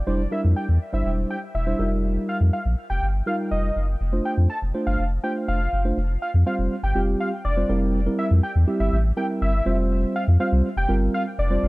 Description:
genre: dance-pop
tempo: 122 BPM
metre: 4/4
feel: straight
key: F major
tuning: A4 = 440 Hz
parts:
  - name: mellow tine electric piano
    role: accompaniment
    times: 0.1-11.7 s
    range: G3 to C5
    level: -26 LUFS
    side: right 1 dB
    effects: none
  - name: warm sub bass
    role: bass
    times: 0.1-11.7 s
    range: E1 to F2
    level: -21 LUFS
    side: equal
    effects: none
  - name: fat analog lead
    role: melody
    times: 0.3-11.7 s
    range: D5 to A5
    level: -28 LUFS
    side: equal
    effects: chorus, dub echo
room: little or no reverb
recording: echo-heavy mix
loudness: -20 LUFS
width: side -21 dB against mid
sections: 0.0-4.0 A section; 4.0-11.7 B section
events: build-up 4.0-11.7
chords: 0.1 Cadd9/F; 1.8 Ebadd9/F; 4.0 Dm7/F; 6.0 Fsus2; 7.7 C7/F; 9.7 Fsus2

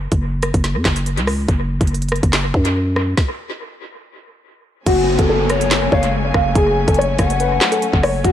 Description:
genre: hip hop, drill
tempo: 142 BPM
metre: 4/4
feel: half-time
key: F# harmonic minor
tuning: A4 = 440 Hz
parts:
  - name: growling 808-style bass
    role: bass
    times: 0.0-8.3 s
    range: F#1 to F#2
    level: -19 LUFS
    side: equal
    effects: none
  - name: drill drum kit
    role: drums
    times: 0.1-8.3 s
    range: crash cymbal, handclaps, hi-hat, kick drum, rim click, snare drum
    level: -19 LUFS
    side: equal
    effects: dub echo
  - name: dark grand piano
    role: melody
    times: 4.9-8.3 s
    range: F#4 to E#5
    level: -18 LUFS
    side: left 1 dB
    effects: dub echo
  - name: warm studio string section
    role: sustained chords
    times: 4.9-8.3 s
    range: F#3 to G#5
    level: -26 LUFS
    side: left 1 dB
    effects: none
  - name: downlifter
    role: sound effects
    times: 4.9-8.2 s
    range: none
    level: -25 LUFS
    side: equal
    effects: none
  - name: mellow hollow polished pan flute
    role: second line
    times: 5.5-8.2 s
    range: C#5 to F#5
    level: -23 LUFS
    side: left 8 dB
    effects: dub echo
room: studio reverb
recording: echo-heavy mix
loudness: -14 LUFS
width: side -10 dB against mid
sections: 0.0-4.9 A section; 4.9-8.3 B section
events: break 0.0-4.9; stop 3.2-4.9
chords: 0.0 F#5; 1.5 N.C.; 4.9 F#madd9

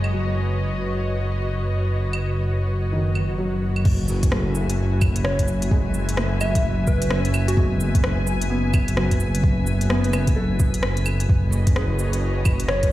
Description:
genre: future garage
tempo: 129 BPM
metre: 4/4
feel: swing 62% on 16ths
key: F# dorian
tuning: A4 = 441 Hz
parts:
  - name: felt-muted upright piano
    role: accompaniment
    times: 0.0-12.9 s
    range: D#3 to A4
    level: -30 LUFS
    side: equal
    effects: sidechain pumping, tape echo
  - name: muted studio string section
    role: sustained chords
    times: 0.0-12.9 s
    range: F#3 to G#5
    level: -30 LUFS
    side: left 1 dB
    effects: sidechain pumping
  - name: swelling detuned saw bass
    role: bass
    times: 0.0-12.9 s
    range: F#1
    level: -22 LUFS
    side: equal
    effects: tube saturation, sidechain pumping
  - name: organic electronic drum kit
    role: drums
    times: 0.0-12.9 s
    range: cabasa, claves, crash cymbal, hi-hat, rim click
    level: -28 LUFS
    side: equal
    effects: overdrive, small room ambience
  - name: drifting glass-harmonics texture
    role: texture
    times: 0.0-12.9 s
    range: B4 to D#6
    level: -37 LUFS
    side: right 1 dB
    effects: chorus, built-in reverb
  - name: electronic kick drum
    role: drums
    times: 3.9-12.9 s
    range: none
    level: -19 LUFS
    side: equal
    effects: overdrive, small room ambience
  - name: soft struck synth lead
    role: melody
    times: 5.2-7.7, 12.7-12.9 s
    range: F#4 to E5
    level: -28 LUFS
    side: equal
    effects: chorus, digital delay
room: light reverb, digital ambience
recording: played on a big sound system in a bare room, large studio reverb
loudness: -19 LUFS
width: side -15 dB against mid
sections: 0.0-3.9 A section; 3.9-12.9 B section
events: none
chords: 0.0 F#sus2; 3.9 F#m9; 11.3 Badd9/F#

